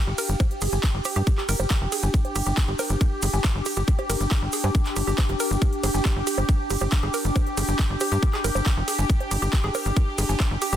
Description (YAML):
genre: psychedelic trance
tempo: 138 BPM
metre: 4/4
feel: straight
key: unclear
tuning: A4 = 440 Hz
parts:
  - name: bubbling stepped-filter texture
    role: sustained chords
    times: 0.0-10.8 s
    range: G4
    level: -33 LUFS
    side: right 2 dB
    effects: chorus, built-in reverb, sidechain pumping
  - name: warbly tape-like pad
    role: texture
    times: 0.1-10.8 s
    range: D4 to D6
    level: -31 LUFS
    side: left 2 dB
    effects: chorus, built-in reverb, sidechain pumping
  - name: woody wave-folded pluck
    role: riff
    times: 0.1-10.8 s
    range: G4 to Ab5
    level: -32 LUFS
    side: moving between left 1 dB and right 7 dB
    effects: chorus, auto-pan, sidechain pumping, ping-pong delay
  - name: tight sequencer bass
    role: bass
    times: 0.1-10.8 s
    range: F1 to G2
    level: -25 LUFS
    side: equal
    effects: none
  - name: big-room dance drum kit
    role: drums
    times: 0.2-10.8 s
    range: bongos, handclaps, hi-hat, ride cymbal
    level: -30 LUFS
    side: right 2 dB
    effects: none
  - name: egg shaker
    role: percussion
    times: 0.2-10.8 s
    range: none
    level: -36 LUFS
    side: right 2 dB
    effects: none
  - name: electronic kick drum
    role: drums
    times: 0.4-10.5 s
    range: none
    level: -22 LUFS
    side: equal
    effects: none
room: little or no reverb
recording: dense, heavily limited modern master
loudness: -21 LUFS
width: side -11 dB against mid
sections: 0.0-10.8 A section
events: none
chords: 0.0 G5